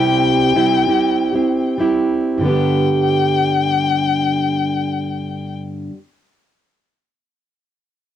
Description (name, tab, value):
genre	pop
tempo	97 BPM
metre	4/4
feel	straight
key	G major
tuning	A4 = 437 Hz
part	rich violin	melody	0.0-5.6 s	G5	-20 LUFS	left 8 dB	cassette tape
part	fingerpicked plugged-in steel-string acoustic guitar	accompaniment	0.0-6.0 s	G2 to G4	-16 LUFS	right 2 dB	cassette tape
room	moderate studio reverb, RT60 0.6 s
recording	home recording on cassette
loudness	-15 LUFS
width	side -10 dB against mid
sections	0.0-2.4 A section; 2.4-4.9 B section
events	none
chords	0.0 C; 2.4 G